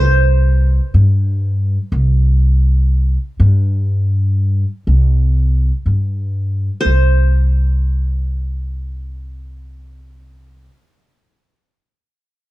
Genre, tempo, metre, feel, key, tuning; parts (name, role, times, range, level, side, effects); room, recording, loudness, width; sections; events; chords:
Arabic maqam ensemble; free time; A4 = 441 Hz
qanun; melody; 0.0-10.6 s; C5; -19 LUFS; right 1 dB; slapback echo
upright bass; bass; 0.0-10.7 s; C2 to G2; -13 LUFS; equal
little or no reverb; dark, warm production; -13 LUFS; side -17 dB against mid
0.0-6.8 A section; 6.8-11.7 B section